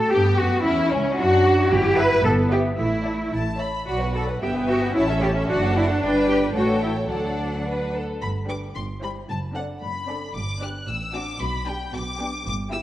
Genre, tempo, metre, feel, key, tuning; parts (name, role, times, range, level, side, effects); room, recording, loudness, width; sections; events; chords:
quick classical-period movement for string orchestra; 112 BPM; 2/4; straight; D major, G major from 8.2 s; A4 = 440 Hz
rich symphonic violin section; melody; 0.0-12.8 s; C#4 to F#6; -30 LUFS; left 3 dB
clear symphonic viola section; accompaniment; 0.0-12.8 s; F#3 to E4; -27 LUFS; equal
rich symphonic cello section; bass; 0.0-12.8 s; F#2 to B4; -24 LUFS; equal
rich symphonic violin section; second line; 0.1-12.8 s; C#4 to G5; -27 LUFS; left 2 dB
rich symphonic double bass section; bass; 0.1-12.8 s; F#1 to G2; -26 LUFS; right 1 dB
moderate scoring stage reverb, RT60 1.6 s; worn, warbling old tape, cassette tape, warbly pitch drift; -20 LUFS; side -14 dB against mid
0.0-8.2 A section; 8.2-12.8 B section
0.0 Gmaj9; 0.6 C#m; 1.2 D/F#; 1.7 Em/G; 2.8 Asus4; 3.3 A; 3.9 Bm; 4.4 Em/G; 5.0 A; 5.5 D/F#; 6.0 G; 6.5 A7; 7.1 D; 8.2 G; 8.8 C/G; 9.3 D7/F#; 10.3 G; 10.9 D7/A; 11.4 G/B